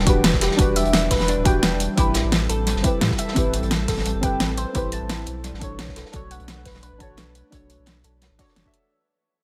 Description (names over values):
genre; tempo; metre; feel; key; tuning
liquid drum and bass; 173 BPM; 4/4; swing 53% on 16ths; unclear; A4 = 440 Hz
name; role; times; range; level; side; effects
deep mellow chord stab; accompaniment; 0.0-8.9 s; C4 to E5; -30 LUFS; equal; chorus, phaser, tape echo
glassy FM pad; sustained chords; 0.0-8.9 s; E3 to B4; -33 LUFS; equal; ensemble chorus, built-in reverb, sidechain pumping
warm sub bass; bass; 0.0-8.6 s; D1 to A2; -29 LUFS; equal; none
crunchy breakbeat drum kit; drums; 0.1-8.7 s; hi-hat, snare drum; -32 LUFS; equal; high-pass filter on hats, high-pass filter on snare, high-pass filter on room
electronic kick drum; drums; 0.1-8.7 s; none; -25 LUFS; equal; overdrive
pop drum kit; drums; 0.1-8.8 s; hi-hat, snare drum; -26 LUFS; equal; overdrive
harp-like synth pluck; arpeggios; 0.4-8.9 s; D4 to A5; -30 LUFS; equal; chorus, digital delay
room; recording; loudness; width
light reverb, digital ambience; none; -21 LUFS; mono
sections
0.0-8.9 A section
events
fade-out 0.0-8.9; filter sweep on synth pluck 0.0-8.9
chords
0.0 Em7; 2.0 Am7; 5.4 Bm7